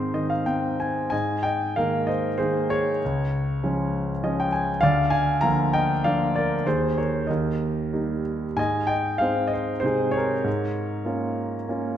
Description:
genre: classical, lyrical solo piano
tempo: 91-101 BPM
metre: 3/4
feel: rubato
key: Ab major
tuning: A4 = 437 Hz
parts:
  - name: warm grand piano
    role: solo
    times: 0.0-12.0 s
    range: Db2 to Bb5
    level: -22 LUFS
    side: equal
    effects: none
room: moderate concert hall reverb, RT60 1.8 s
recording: none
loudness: -22 LUFS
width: side -10 dB against mid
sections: 0.0-1.1 A section; 1.1-12.0 B section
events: grand piano fill 0.0-1.1, 3.9-4.8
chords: 0.0 Ab; 1.1 Absus2; 3.0 Db; 4.8 Bb/D; 6.7 Ab/Eb; 7.3 Eb; 8.6 Ab; 10.5 Db6/Ab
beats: 0.47 | 1.12 1.76 2.40 | 3.02 3.62 4.21 | 4.81 5.42 6.03 | 6.65 7.29 7.93 | 8.58 9.22 9.85 | 10.46 11.07 11.68

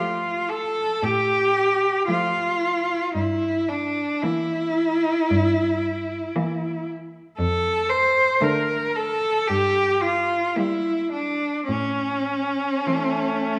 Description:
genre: classical, lyrical piece for cello ensemble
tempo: 51-59 BPM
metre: 4/4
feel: rubato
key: D minor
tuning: A4 = 441 Hz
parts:
  - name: clear cello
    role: melody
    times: 0.0-13.6 s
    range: C#4 to C5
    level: -23 LUFS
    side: equal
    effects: none
  - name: warm cello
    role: second line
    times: 0.0-13.6 s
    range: A3 to Bb3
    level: -34 LUFS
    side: equal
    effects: none
  - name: rich cello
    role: accompaniment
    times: 0.0-13.6 s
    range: D3 to G3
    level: -32 LUFS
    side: equal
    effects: none
  - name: rich cello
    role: bass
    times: 1.0-12.6 s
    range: F2 to A2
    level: -31 LUFS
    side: equal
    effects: none
room: moderate scoring stage reverb, RT60 1.6 s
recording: none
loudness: -23 LUFS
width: mono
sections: 0.0-13.6 A section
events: none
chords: 0.0 Dm (rootless); 3.2 Edim/G; 7.4 Dm/F; 9.5 Gm; 11.7 A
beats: 1.03 2.09 | 3.15 4.23 5.30 6.36 | 7.39 8.43 9.50 10.57 | 11.69 12.87

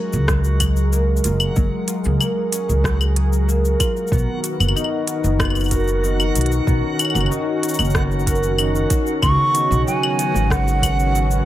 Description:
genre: folktronica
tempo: 94 BPM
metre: 4/4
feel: straight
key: F# major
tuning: A4 = 440 Hz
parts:
  - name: warm analog pad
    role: sustained chords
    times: 0.0-11.4 s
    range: D#3 to A#4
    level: -26 LUFS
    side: left 1 dB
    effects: chorus, tremolo, vintage 12-bit sampler grit
  - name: concert harp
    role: arpeggios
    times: 0.0-11.4 s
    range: C#3 to B4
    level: -24 LUFS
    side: left 2 dB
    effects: digital delay
  - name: backwards swelling texture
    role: texture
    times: 0.0-11.4 s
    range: F#4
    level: -30 LUFS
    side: right 4 dB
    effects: built-in reverb
  - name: upright bass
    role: bass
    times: 0.1-11.4 s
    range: F#1 to C#2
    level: -19 LUFS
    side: equal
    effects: tube saturation
  - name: organic electronic drum kit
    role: drums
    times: 0.1-11.4 s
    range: cabasa, claves, hi-hat, rim click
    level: -24 LUFS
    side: left 2 dB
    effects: overdrive
  - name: electronic kick drum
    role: drums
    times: 0.3-11.0 s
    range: none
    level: -21 LUFS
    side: equal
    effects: overdrive
  - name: mellow hollow jazz flute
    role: melody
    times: 9.2-11.4 s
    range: F#5 to C#6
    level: -20 LUFS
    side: right 2 dB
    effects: digital delay
room: light reverb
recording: none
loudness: -16 LUFS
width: side -13 dB against mid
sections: 0.0-11.4 A section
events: none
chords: 0.0 F#maj9; 4.1 Bmaj7; 9.2 C#9sus4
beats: 0.29 0.93 | 1.57 2.21 2.85 3.48 | 4.12 4.76 5.40 6.04 | 6.67 7.31 7.95 8.59 | 9.23 9.87 10.51 11.14

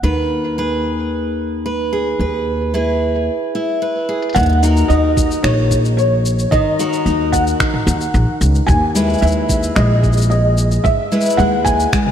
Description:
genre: folktronica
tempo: 111 BPM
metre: 4/4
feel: straight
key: Eb phrygian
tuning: A4 = 437 Hz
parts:
  - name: picked steel-string acoustic guitar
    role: arpeggios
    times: 0.0-12.1 s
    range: Eb3 to B4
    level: -19 LUFS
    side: equal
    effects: tape echo
  - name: upright bass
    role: bass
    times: 0.0-11.8 s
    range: Bb1 to Eb2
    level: -16 LUFS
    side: equal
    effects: none
  - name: organic electronic drum kit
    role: drums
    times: 4.1-12.1 s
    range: finger snaps, hi-hat, shaker, toms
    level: -23 LUFS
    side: equal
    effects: overdrive, low-pass filter on hats, low-pass filter on toms, low-pass filter on perc, low-pass filter on snare
  - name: felt-muted upright piano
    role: melody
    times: 4.3-12.1 s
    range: Db5 to G#5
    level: -19 LUFS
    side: right 1 dB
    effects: ensemble chorus, tape echo
  - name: electronic kick drum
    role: drums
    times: 4.4-12.0 s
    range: none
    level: -20 LUFS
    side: equal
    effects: none
room: moderate lush hall reverb, RT60 2.4 s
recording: dreamy mix soaked in reverb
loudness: -14 LUFS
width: side -9 dB against mid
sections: 0.0-4.4 A section; 4.4-12.1 B section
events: drum fill 4.1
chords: 0.0 E/Eb; 4.4 Ebm; 8.7 E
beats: | 0.04 0.58 1.12 1.66 | 2.20 2.74 3.28 3.82 | 4.36 4.90 5.44 5.98 | 6.52 7.06 7.60 8.14 | 8.68 9.22 9.77 10.31 | 10.85 11.39 11.93

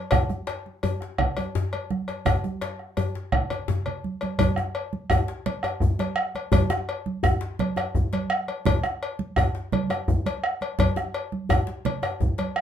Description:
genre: west african traditional, West African drum ensemble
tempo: 112 BPM (dotted quarters)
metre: 12/8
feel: straight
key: none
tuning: none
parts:
  - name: bombo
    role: percussion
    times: 0.1-12.6 s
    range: none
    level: -25 LUFS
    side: right 2 dB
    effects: none
  - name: congas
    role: percussion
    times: 0.1-12.6 s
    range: none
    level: -29 LUFS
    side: right 5 dB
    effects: none
  - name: cowbell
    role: percussion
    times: 0.1-12.5 s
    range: none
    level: -30 LUFS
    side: left 5 dB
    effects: none
  - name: djembe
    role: percussion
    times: 0.1-12.6 s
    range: none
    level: -27 LUFS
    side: left 3 dB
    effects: none
room: wet studio ambience, RT60 0.5 s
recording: minimal, uncompressed stereo recording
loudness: -23 LUFS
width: side -9 dB against mid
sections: 0.0-4.4 A section; 4.4-12.6 B section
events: drum fill 3.5-4.4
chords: none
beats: | 0.11 0.65 1.18 1.72 | 2.25 2.79 3.32 3.86 | 4.39 4.92 5.46 5.99 | 6.53 7.06 7.59 8.12 | 8.66 9.19 9.72 10.26 | 10.79 11.32 11.85 12.38

